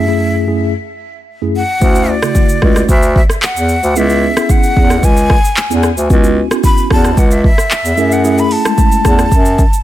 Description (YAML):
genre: afrobeats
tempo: 112 BPM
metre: 4/4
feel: straight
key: unclear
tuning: A4 = 441 Hz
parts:
  - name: breathy jazz flute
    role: melody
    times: 0.0-9.8 s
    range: D5 to B5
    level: -17 LUFS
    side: left 1 dB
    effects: ping-pong delay
  - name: mellow tine electric piano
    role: accompaniment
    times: 0.0-9.3 s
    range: F#2 to G#4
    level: -16 LUFS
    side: equal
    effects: medium stereo tremolo
  - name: warm bass clarinet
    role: bass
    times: 1.8-9.6 s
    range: C#2 to F#2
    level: -14 LUFS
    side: equal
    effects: none
  - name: afro-pop drum kit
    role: drums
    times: 1.8-9.8 s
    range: handclaps, hi-hat, kick drum, rim click, shaker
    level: -12 LUFS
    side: equal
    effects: overdrive
room: little or no reverb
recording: none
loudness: -9 LUFS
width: side -13 dB against mid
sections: 0.0-9.8 A section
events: none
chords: 0.0 F#m9; 1.8 Dmaj7; 4.0 C#m7; 6.1 A69/C# (rootless); 8.0 F#m9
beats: 0.21 0.74 1.28 | 1.82 2.35 2.89 3.42 | 3.96 4.50 5.03 5.57 | 6.10 6.64 7.17 7.71 | 8.24 8.78 9.32